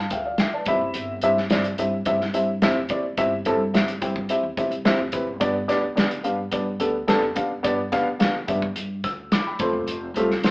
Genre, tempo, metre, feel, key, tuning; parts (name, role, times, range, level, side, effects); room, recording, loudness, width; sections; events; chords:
uptempo 1960s-style soul; 108 BPM; 4/4; straight; G mixolydian; A4 = 440 Hz
dark upright piano; accompaniment; 0.0-10.5 s; A3 to E6; -22 LUFS; equal
upright bass; bass; 0.0-10.5 s; E1 to G2; -31 LUFS; equal
warm soul drum kit; drums; 0.1-10.5 s; hi-hat, kick drum, snare drum; -24 LUFS; equal
moderate studio reverb, RT60 0.8 s; band playing live in one room, AM radio sound; -20 LUFS; side -24 dB against mid
0.0-10.5 A section
upright piano fill 0.0-0.9
0.0 G; 0.7 C; 5.4 G; 9.6 F